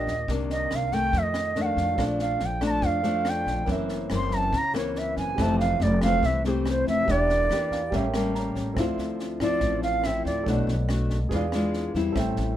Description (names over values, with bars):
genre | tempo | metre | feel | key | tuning
bossa nova | 141 BPM | 4/4 | straight | F major, D minor from 8.8 s | A4 = 440 Hz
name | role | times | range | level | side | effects
bright reedy bansuri | melody | 0.0-10.5 s | G4 to C6 | -26 LUFS | right 2 dB | none
nylon-string guitar | accompaniment | 0.0-12.6 s | F2 to G4 | -28 LUFS | left 3 dB | none
upright bass | bass | 0.0-12.6 s | E1 to F2 | -29 LUFS | equal | none
compact cocktail drum kit | drums | 0.1-12.4 s | kick drum, rim click, snare drum | -33 LUFS | equal | none
warm concert grand piano | accompaniment | 2.0-12.6 s | Db4 to Bb5 | -34 LUFS | right 4 dB | none
room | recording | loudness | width
light reverb | minimal, uncompressed stereo recording | -23 LUFS | side -11 dB against mid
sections
0.0-8.8 A section; 8.8-12.6 A section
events
bansuri solo 0.0-12.6; grand piano fill 7.5-8.8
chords
0.3 Cm9; 1.1 F6; 2.0 Bbmaj7; 3.7 Gb7#11; 5.4 Fmaj7; 7.1 Em7b5; 7.9 A7b9; 8.8 Dm9; 10.5 Bm7; 11.3 E7b9